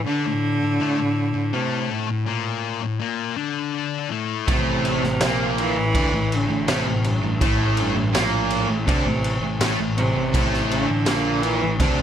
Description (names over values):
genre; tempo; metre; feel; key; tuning
quiet-loud alternative rock; 82 BPM; 4/4; straight; A minor; A4 = 436 Hz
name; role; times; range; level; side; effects
clear cello; melody; 0.0-12.0 s; G2 to E3; -24 LUFS; right 2 dB; none
thick fuzz guitar; riff; 0.0-12.0 s; A2 to D4; -25 LUFS; left 6 dB; distortion
distorted electric guitar; riff; 4.5-12.0 s; A2 to D4; -30 LUFS; right 1 dB; overdrive
raw garage guitar; riff; 4.5-12.0 s; A2 to D4; -28 LUFS; right 15 dB; overdrive
fuzz picked electric bass; bass; 4.5-12.0 s; A1 to D2; -27 LUFS; right 1 dB; overdrive
raw garage drum kit; drums; 4.5-12.0 s; crash cymbal, kick drum, snare drum; -24 LUFS; equal; none
room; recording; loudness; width
small room ambience; none; -19 LUFS; side -9 dB against mid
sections
0.0-12.0 A section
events
none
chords
0.0 Am